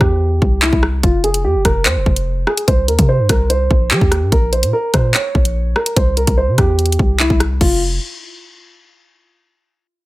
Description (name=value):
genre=hip hop, drill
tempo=146 BPM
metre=4/4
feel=half-time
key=unclear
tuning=A4 = 440 Hz
part: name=dark concert grand piano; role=melody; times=0.0-7.8 s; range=E4 to Db5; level=-19 LUFS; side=right 1 dB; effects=low-pass filter
part: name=long sustained 808-style bass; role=bass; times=0.0-8.0 s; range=F1 to G3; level=-16 LUFS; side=equal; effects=none
part: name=drill drum kit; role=drums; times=0.0-7.7 s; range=crash cymbal, handclaps, hi-hat, kick drum, rim click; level=-16 LUFS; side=equal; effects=none
room=digital ambience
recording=none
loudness=-12 LUFS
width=side -18 dB against mid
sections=0.0-7.6 A section; 7.6-9.3 B section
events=break 0.0-1.0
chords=0.0 C; 1.0 F5; 2.7 Cm; 4.3 Bbm; 6.0 C; 7.6 N.C.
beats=0.21 0.62 | 1.03 1.45 1.86 2.27 | 2.68 3.09 3.50 3.91 | 4.32 4.73 5.14 5.55 | 5.96 6.38 6.79 7.20 | 7.61